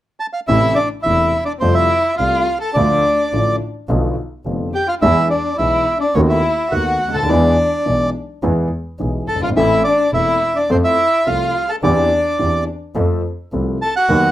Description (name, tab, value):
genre	tango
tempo	106 BPM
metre	4/4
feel	rubato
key	A minor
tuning	A4 = 440 Hz
part	bandoneon	melody	0.2-14.3 s	C5 to A5	-17 LUFS	right 2 dB	none
part	dark violin	second line	0.5-14.3 s	C4 to A4	-22 LUFS	left 5 dB	none
part	warm concert grand piano	accompaniment	0.5-14.3 s	E1 to A4	-19 LUFS	left 1 dB	none
part	rich double bass	bass	0.5-14.3 s	E1 to F2	-21 LUFS	right 1 dB	none
room	moderate studio reverb, RT60 0.6 s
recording	rough home demo mix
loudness	-14 LUFS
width	side -13 dB against mid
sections	0.5-14.3 A section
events	none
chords	0.5 Am; 1.6 Fadd9; 2.8 Dm; 3.9 Bdim; 5.0 E; 6.2 B7/D#; 7.3 E; 9.6 Am; 10.7 F; 11.8 Cadd9/E; 13.0 F